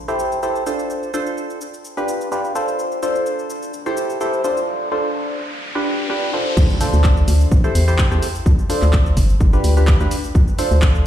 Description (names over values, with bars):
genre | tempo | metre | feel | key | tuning
piano house | 127 BPM | 4/4 | swing 54% on 16ths | D dorian | A4 = 439 Hz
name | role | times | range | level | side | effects
impact and riser | sound effects | 0.0-8.5 s | none | -27 LUFS | equal | none
percussive organ stab | riff | 0.1-11.1 s | D4 to C5 | -21 LUFS | equal | chorus, phaser, sidechain pumping, dub echo
punchy analog drum machine | drums | 0.1-11.0 s | crash cymbal, handclaps, hi-hat, shaker | -29 LUFS | equal | overdrive, studio reverb
organ-like FM bass | bass | 6.6-11.0 s | G1 to E2 | -16 LUFS | equal | tube saturation, sidechain pumping
electronic kick drum | drums | 6.6-10.9 s | none | -16 LUFS | equal | studio reverb
room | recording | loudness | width
moderate digital room reverb, RT60 1.2 s | played on a big sound system in a bare room, large studio reverb | -16 LUFS | side -11 dB against mid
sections
0.0-6.6 A section; 6.6-11.1 B section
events
impact 0.0-0.9, 6.6-8.5; riser 3.8-6.6; drop 6.6-11.1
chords
0.0 Am7; 0.9 Dm7; 1.6 G7; 2.8 Dm7; 3.7 Am7; 4.7 Dm7; 5.4 G7; 6.6 Dm7; 7.5 Am7; 8.5 Dm7; 9.2 G7; 10.3 Dm7